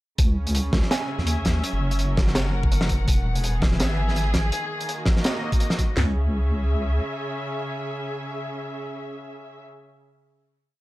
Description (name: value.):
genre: half-time drum and bass.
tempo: 166 BPM.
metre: 4/4.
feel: swing 54% on 16ths, half-time.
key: C# dorian.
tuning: A4 = 440 Hz.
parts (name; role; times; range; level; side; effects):
muted studio string section; sustained chords; 0.2-9.6 s; C#3 to F#5; -30 LUFS; equal; vintage 12-bit sampler grit, sidechain pumping.
deep soft wobble bass; bass; 0.2-7.0 s; E1 to D#2; -23 LUFS; equal; chorus.
crunchy breakbeat drum kit; drums; 0.2-5.9 s; hi-hat, snare drum; -26 LUFS; equal; none.
drum and bass drum kit; drums; 0.2-6.1 s; kick drum, snare drum, toms; -22 LUFS; equal; none.
soft synth bell; melody; 0.9-1.1 s; G#5; -35 LUFS; right 4 dB; chorus, ping-pong delay.
room: small room ambience.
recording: none.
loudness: -21 LUFS.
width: side -18 dB against mid.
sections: 0.2-6.0 drop; 6.0-8.9 final chord.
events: drop 0.2-6.0.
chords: 0.2 C#m; 1.6 F#; 3.1 E; 4.5 D#m; 6.0 C#m.